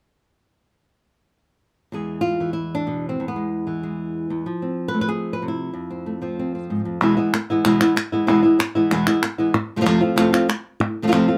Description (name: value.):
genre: flamenco.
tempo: free time.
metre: none.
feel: none.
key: unclear.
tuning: A4 = 439 Hz.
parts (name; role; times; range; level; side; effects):
flamenco guitar; melody; 1.9-11.4 s; E2 to B4; -22 LUFS; equal; none.
palmas hand claps; percussion; 7.0-11.3 s; none; -26 LUFS; equal; none.
room: moderate studio ambience, RT60 0.5 s.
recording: close, detailed microphones.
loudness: -21 LUFS.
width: mono.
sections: 1.9-7.0 A section; 7.0-11.4 B section.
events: none.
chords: 1.9 E; 4.5 F; 7.0 E; 9.5 F.